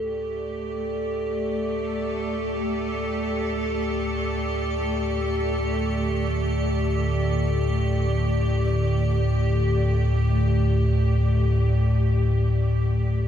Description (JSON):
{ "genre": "dark ambient drone", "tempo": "free time", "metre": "none", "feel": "none", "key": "unclear", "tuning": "A4 = 439 Hz", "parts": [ { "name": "bright studio cello section", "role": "sustained chords", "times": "0.0-13.3 s", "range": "A3 to D5", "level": "-29 LUFS", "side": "right 1 dB", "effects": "none" }, { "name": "deep rumbling drone", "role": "drone", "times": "0.0-13.3 s", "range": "D2 to A2", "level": "-23 LUFS", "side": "equal", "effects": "built-in reverb" }, { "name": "icy glass pad", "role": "texture", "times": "0.0-13.3 s", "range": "G4", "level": "-30 LUFS", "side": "left 1 dB", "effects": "chorus, built-in reverb" } ], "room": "wet cathedral reverb, RT60 5.3 s", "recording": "dark, warm production", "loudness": "-21 LUFS", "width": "side -9 dB against mid", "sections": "0.0-13.3 A section", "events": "fade-in on synth drone 0.0-13.3", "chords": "0.0 D5", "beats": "free time" }